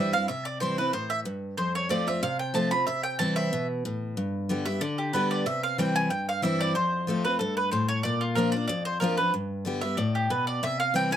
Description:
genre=bluegrass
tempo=186 BPM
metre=4/4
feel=straight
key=C major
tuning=A4 = 440 Hz
part: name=mandolin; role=melody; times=0.0-11.2 s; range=F4 to B5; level=-27 LUFS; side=right 2 dB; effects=none
part: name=picked steel-string acoustic guitar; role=accompaniment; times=0.0-11.2 s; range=F2 to G4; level=-27 LUFS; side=left 1 dB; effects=none
room=light reverb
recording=close, detailed microphones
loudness=-25 LUFS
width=side -10 dB against mid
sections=0.0-4.2 A section; 4.2-11.2 B section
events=none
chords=0.0 C; 1.6 F; 2.9 C; 4.2 G; 5.5 C; 6.8 F; 8.0 Bb; 9.3 G; 10.6 C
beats=| 0.29 0.61 0.94 1.26 | 1.58 1.91 2.23 2.55 | 2.88 3.20 3.52 3.85 | 4.17 4.49 4.81 5.14 | 5.46 5.78 6.11 6.43 | 6.75 7.07 7.40 7.72 | 8.04 8.37 8.69 9.01 | 9.33 9.66 9.98 10.30 | 10.63 10.95

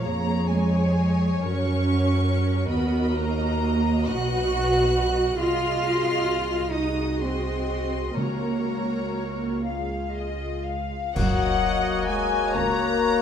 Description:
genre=classical, slow romantic movement for symphony orchestra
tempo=39-50 BPM (dotted quarters)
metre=6/8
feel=rubato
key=F# major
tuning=A4 = 440 Hz
part: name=warm studio violin section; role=melody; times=0.0-13.2 s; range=C#5 to A#5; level=-31 LUFS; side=left 6 dB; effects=none
part: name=warm studio violin section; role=second line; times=0.0-13.2 s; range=F#5 to F#6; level=-33 LUFS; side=left 2 dB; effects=none
part: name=warm studio viola section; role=accompaniment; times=0.0-13.2 s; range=E#4 to D#5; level=-32 LUFS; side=left 1 dB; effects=none
part: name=dark studio cello section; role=bass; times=0.0-13.2 s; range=C#2 to F#4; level=-26 LUFS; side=right 2 dB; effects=none
part: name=dark studio double bass section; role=bass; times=0.0-13.2 s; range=F#1 to F#2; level=-27 LUFS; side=right 2 dB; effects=none
part: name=timpani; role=percussion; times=8.2-9.6 s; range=C#3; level=-33 LUFS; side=equal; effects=none
part: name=clear clarinet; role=second line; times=11.2-13.2 s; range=F#4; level=-32 LUFS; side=equal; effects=none
part: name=mellow hollow silver concert flute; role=second line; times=11.2-13.2 s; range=F#6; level=-34 LUFS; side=left 4 dB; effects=none
part: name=warm oboe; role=second line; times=11.2-13.2 s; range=C#5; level=-34 LUFS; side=right 1 dB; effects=none
part: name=mellow bassoon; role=accompaniment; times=11.2-13.2 s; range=A#3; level=-30 LUFS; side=equal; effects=none
part: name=mellow French horn section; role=sustained chords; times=11.2-13.2 s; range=F#3 to A#3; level=-27 LUFS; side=left 7 dB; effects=none
part: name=clash cymbals and concert bass drum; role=percussion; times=11.2-13.0 s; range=none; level=-30 LUFS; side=left 1 dB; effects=none
room=moderate scoring stage reverb, RT60 2.0 s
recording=dark, warm production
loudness=-22 LUFS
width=side -8 dB against mid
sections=0.0-11.2 A section; 11.2-13.2 B section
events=band accent 11.2-12.1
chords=0.0 C#/E#; 1.4 F#; 2.7 D#m; 4.1 B; 5.4 G#7/B#; 8.2 F#/C#; 9.7 C#; 11.2 F#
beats=| 0.04 1.44 | 2.70 4.09 | 5.38 6.73 | 8.17 9.66 | 11.16 12.55

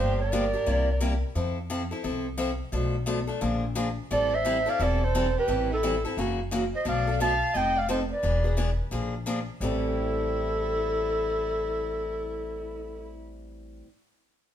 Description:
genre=acoustic string swing (jazz manouche)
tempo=174 BPM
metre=4/4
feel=swing 62% on 8ths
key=A minor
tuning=A4 = 437 Hz
part: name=breathy clarinet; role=melody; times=0.0-1.2, 4.1-13.1 s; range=A4 to A5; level=-28 LUFS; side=right 1 dB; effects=none
part: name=dark violin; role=second line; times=0.0-1.2, 4.1-13.1 s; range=E4 to F5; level=-36 LUFS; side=equal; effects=none
part: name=picked steel-string acoustic guitar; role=accompaniment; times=0.0-13.9 s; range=A2 to A4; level=-31 LUFS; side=left 2 dB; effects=none
part: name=upright bass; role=bass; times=0.0-13.8 s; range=E1 to F2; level=-30 LUFS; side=equal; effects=none
room=moderate large studio reverb, RT60 1.0 s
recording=band playing live in one room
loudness=-25 LUFS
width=side -10 dB against mid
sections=0.0-6.9 A section; 6.9-9.6 B section; 9.6-12.4 C section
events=none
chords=0.0 Gm7; 0.7 C7; 1.4 Fmaj7; 2.7 Bm7b5; 3.4 Bb7; 4.1 Am7; 6.2 F#7; 6.9 Bm7b5; 7.6 F7; 8.2 E7; 8.9 Bb7; 9.6 Am7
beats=0.32 0.67 1.01 | 1.36 1.70 2.05 2.39 | 2.73 3.08 3.42 3.77 | 4.11 4.46 4.80 5.14 | 5.49 5.83 6.18 6.52 | 6.86 7.21 7.55 7.90 | 8.24 8.59 8.93 9.28 | 9.62 9.96 10.31 10.65 | 11.00 11.34 11.69 12.03

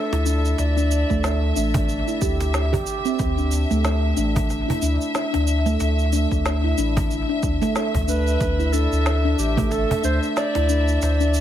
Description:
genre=organic downtempo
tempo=92 BPM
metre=4/4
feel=swing 58% on 16ths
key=unclear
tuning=A4 = 438 Hz
part: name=warm clarinet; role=melody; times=0.0-1.5, 8.1-11.4 s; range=G4 to D5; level=-28 LUFS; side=right 1 dB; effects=tape echo, shimmer reverb
part: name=clear studio string section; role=sustained chords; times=0.0-11.4 s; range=E5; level=-30 LUFS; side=left 2 dB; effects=sidechain pumping, shimmer reverb
part: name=handpan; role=arpeggios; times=0.1-11.3 s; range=A3 to G4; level=-24 LUFS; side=right 1 dB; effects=tape echo, shimmer reverb
part: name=warm sub bass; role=bass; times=0.1-11.4 s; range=A1 to D2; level=-22 LUFS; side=equal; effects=sidechain pumping
part: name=cajon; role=percussion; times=0.1-11.4 s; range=none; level=-28 LUFS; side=right 1 dB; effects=analog delay
part: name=electronic shaker and snare drum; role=drums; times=0.3-11.4 s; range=none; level=-30 LUFS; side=right 1 dB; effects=none
part: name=electronic kick drum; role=drums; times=1.1-9.7 s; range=none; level=-27 LUFS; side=equal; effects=overdrive
room=light reverb, small room ambience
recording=echo-heavy mix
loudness=-19 LUFS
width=side -11 dB against mid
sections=0.0-11.4 A section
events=none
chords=0.0 Dsus2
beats=| 0.59 1.24 1.89 2.54 | 3.19 3.85 4.50 5.15 | 5.80 6.46 7.11 7.76 | 8.41 9.06 9.72 10.37 | 11.02

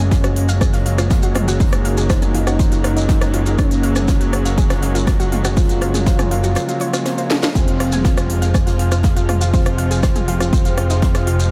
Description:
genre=melodic techno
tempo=121 BPM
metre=4/4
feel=straight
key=unclear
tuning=A4 = 440 Hz
part: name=soft octave-layered synth lead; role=melody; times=0.0-11.4 s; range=C4 to F4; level=-27 LUFS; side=equal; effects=chorus, delay
part: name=dark chamber string section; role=sustained chords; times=0.0-11.5 s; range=C3 to F4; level=-26 LUFS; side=equal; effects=sidechain pumping
part: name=soft round pluck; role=arpeggios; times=0.0-11.5 s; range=C4 to Ab6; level=-29 LUFS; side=equal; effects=chorus, sidechain pumping, diffuse ambient delay
part: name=fat analog bass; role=bass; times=0.0-11.5 s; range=F1 to Gb1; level=-22 LUFS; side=equal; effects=sidechain pumping
part: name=electronic kick drum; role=drums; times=0.1-11.1 s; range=none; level=-19 LUFS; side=equal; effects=overdrive
part: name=modern studio drum kit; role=drums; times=0.1-11.4 s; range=hi-hat, snare drum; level=-39 LUFS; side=equal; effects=none
part: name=techno drum kit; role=drums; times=0.1-11.5 s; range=hi-hat, rim click, snare drum, toms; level=-27 LUFS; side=equal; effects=overdrive
part: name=maracas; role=percussion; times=0.1-11.5 s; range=none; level=-34 LUFS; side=equal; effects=none
room=light reverb, small room ambience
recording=none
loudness=-17 LUFS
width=mono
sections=0.0-11.5 A section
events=drum fill 7.3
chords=0.0 Gbadd9; 7.6 Fm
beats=0.12 0.61 1.11 | 1.60 2.10 2.59 3.09 | 3.59 4.08 4.58 5.07 | 5.57 6.07 6.56 7.06 | 7.55 8.05 8.54 9.04 | 9.54 10.03 10.53 11.02

